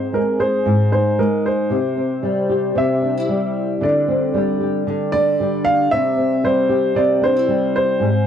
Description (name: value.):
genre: pop.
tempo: 114 BPM.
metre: 4/4.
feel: swing 55% on 16ths.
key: C major.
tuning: A4 = 441 Hz.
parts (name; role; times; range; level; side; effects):
dark upright piano; melody; 0.0-8.3 s; Bb4 to F5; -19 LUFS; right 1 dB; none.
flamenco guitar; accompaniment; 0.0-8.3 s; Ab2 to Ab4; -18 LUFS; left 1 dB; double-tracked left and right.
room: light reverb, small room ambience.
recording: dry, close 1970s-style studio recording.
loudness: -16 LUFS.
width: side -8 dB against mid.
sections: 0.0-8.3 A section.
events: none.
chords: 0.0 Ab; 1.7 C; 3.8 Gsus4/D; 5.9 C.